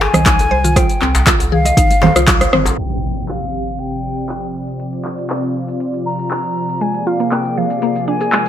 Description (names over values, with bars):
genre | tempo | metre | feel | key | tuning
afro house | 119 BPM | 4/4 | straight | unclear | A4 = 440 Hz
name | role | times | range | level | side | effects
breathy mellow silver concert flute | melody | 0.0-8.5 s | F5 to Bb5 | -21 LUFS | left 2 dB | tape echo
mallet-like synth pluck | arpeggios | 0.0-2.6, 6.8-8.5 s | F3 to Eb5 | -20 LUFS | equal | chorus, sidechain pumping
warm sub bass | bass | 0.0-2.7 s | G1 to C2 | -19 LUFS | equal | sidechain pumping
djembe | percussion | 0.0-2.8 s | none | -22 LUFS | left 2 dB | none
afro-pop drum kit | drums | 0.1-8.5 s | handclaps, hi-hat, rim click, shaker, toms | -17 LUFS | equal | overdrive
congas | percussion | 0.1-2.6 s | none | -20 LUFS | right 5 dB | none
electronic kick drum | drums | 0.3-2.4 s | none | -15 LUFS | equal | overdrive
warm analog pad | sustained chords | 2.8-8.5 s | C3 to D5 | -22 LUFS | equal | chorus, sidechain pumping
impact | sound effects | 2.8-4.8 s | none | -24 LUFS | equal | none
room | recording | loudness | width
light reverb | low-pass filter | -14 LUFS | side -10 dB against mid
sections
0.0-2.8 A section; 2.8-8.5 B section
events
band accent 2.3; impact 2.8-4.8; filter sweep on analog synth pad 2.8-8.5; filter sweep 2.8-8.5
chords
0.0 Fm7; 2.8 G7sus4/C; 6.8 Bb7/C